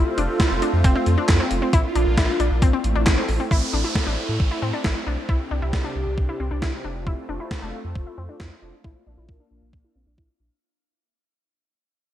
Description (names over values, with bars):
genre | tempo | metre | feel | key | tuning
synth-pop | 135 BPM | 4/4 | straight | A minor | A4 = 440 Hz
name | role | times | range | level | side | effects
phased analog pad | sustained chords | 0.0-10.6 s | C3 to G4 | -27 LUFS | right 1 dB | phaser, chorus, low-pass filter, shimmer reverb
analog pluck | arpeggios | 0.0-10.6 s | C4 to E4 | -28 LUFS | left 3 dB | chorus, low-pass filter, tape echo, shimmer reverb
round analog bass | bass | 0.0-10.5 s | F1 to A2 | -24 LUFS | equal | none
gated 80s digital drum machine | drums | 0.2-10.3 s | handclaps, hi-hat, kick drum, snare drum | -22 LUFS | equal | gated reverb, gated reverb snare
downlifter | sound effects | 3.5-7.1 s | none | -32 LUFS | right 2 dB | none
room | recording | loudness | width
light reverb | none | -19 LUFS | side -12 dB against mid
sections
0.0-3.5 A section; 3.5-10.6 B section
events
fade-out 3.5-10.6; filter sweep 3.5-10.6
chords
0.0 F; 1.7 Bb; 2.6 Am; 5.3 Csus2; 6.8 F; 8.8 Bb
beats
0.40 0.84 1.29 | 1.73 2.18 2.62 3.07 | 3.51 3.96 4.40 4.84 | 5.29 5.73 6.18 6.62 | 7.07 7.51 7.96 8.40 | 8.84 9.29 9.73 10.18